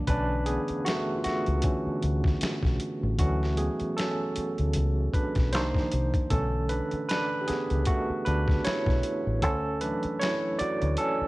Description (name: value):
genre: R&B, neo-soul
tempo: 77 BPM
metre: 4/4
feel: swing 56% on 16ths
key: B dorian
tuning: A4 = 440 Hz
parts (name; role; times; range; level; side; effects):
- barky tine electric piano; accompaniment; 0.0-11.3 s; D3 to D5; -28 LUFS; right 1 dB; overdrive, medium tremolo, cassette tape
- deep dub fingered electric bass; bass; 0.1-11.2 s; A1 to D2; -28 LUFS; equal; none
- boom bap sampler-style drum kit; drums; 0.1-11.2 s; hi-hat, kick drum, snare drum; -29 LUFS; equal; cassette tape
room: little or no reverb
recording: home recording on cassette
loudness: -25 LUFS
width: side -20 dB against mid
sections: 0.0-11.3 A section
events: tine electric piano solo 0.0-11.3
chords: 0.1 Bm11; 3.2 Dmaj9; 5.5 Cm11; 6.3 Bm11; 9.4 Dmaj9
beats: | 0.07 0.85 1.63 2.41 | 3.19 3.97 4.75 5.53 | 6.31 7.09 7.87 8.64 | 9.42 10.20 10.98